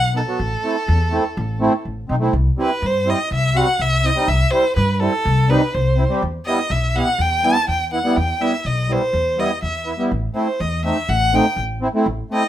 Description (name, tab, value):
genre	klezmer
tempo	123 BPM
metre	4/4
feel	straight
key	unclear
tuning	A4 = 438 Hz
part	rich violin	melody	0.0-12.5 s	A4 to A5	-20 LUFS	equal	none
part	upright bass	bass	0.0-12.2 s	A1 to G2	-20 LUFS	left 1 dB	none
part	accordion	accompaniment	0.1-12.4 s	F#3 to G4	-20 LUFS	right 1 dB	light tremolo tuning
room	light reverb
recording	minimal, uncompressed stereo recording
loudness	-16 LUFS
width	side -12 dB against mid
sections	0.0-2.3 A section; 2.3-12.5 A section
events	none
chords	0.4 Am; 2.3 C; 6.2 Em; 10.1 Am